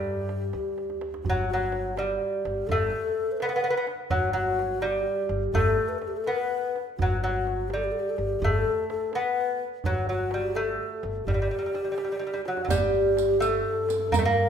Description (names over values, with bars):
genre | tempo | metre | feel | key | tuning
Persian modal ensemble | 84 BPM (dotted quarters) | 6/8 | straight | G dastgah mahur | A4 = 440 Hz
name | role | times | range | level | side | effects
lute | melody | 0.0-14.5 s | F#3 to B3 | -27 LUFS | equal | none
breathy mellow low ney | second line | 0.0-14.5 s | F#4 to C5 | -30 LUFS | left 3 dB | none
upright bass | bass | 0.0-14.5 s | G1 to G2 | -31 LUFS | left 1 dB | none
tombak | percussion | 0.1-14.4 s | none | -33 LUFS | right 2 dB | none
rich double bass | drone | 12.7-14.5 s | G2 | -36 LUFS | right 5 dB | none
riq | percussion | 12.7-14.2 s | none | -36 LUFS | right 7 dB | none
room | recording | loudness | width
moderate recital hall reverb, RT60 1.5 s | minimal, uncompressed stereo recording | -24 LUFS | side -8 dB against mid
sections
0.0-1.3 A section; 1.3-12.7 B section; 12.7-14.5 C section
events
drum fill 0.8-1.3, 12.2-12.7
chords
none